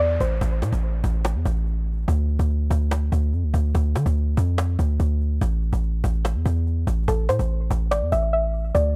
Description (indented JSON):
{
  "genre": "hip hop, trap",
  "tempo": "144 BPM",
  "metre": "4/4",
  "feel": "half-time",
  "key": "A minor",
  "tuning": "A4 = 440 Hz",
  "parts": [
    { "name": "soft round pluck", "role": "melody", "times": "0.0-0.4, 7.1-8.9 s", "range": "A4 to E5", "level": "-26 LUFS", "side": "equal", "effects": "chorus, tape echo" },
    { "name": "warm 808-style bass", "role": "bass", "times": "0.0-9.0 s", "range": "A1 to D3", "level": "-23 LUFS", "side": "equal", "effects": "none" },
    { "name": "cajon", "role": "drums", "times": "0.0-8.9 s", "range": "none", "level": "-32 LUFS", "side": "equal", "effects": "none" },
    { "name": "downlifter", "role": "sound effects", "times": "0.0-2.1 s", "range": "none", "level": "-45 LUFS", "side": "equal", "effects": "none" }
  ],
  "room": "small room ambience",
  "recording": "dry, gritty hardware recording",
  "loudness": "-23 LUFS",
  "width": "mono",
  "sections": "0.0-9.0 A section",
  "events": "none",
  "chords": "0.0 A5; 2.1 Dm; 5.4 Am"
}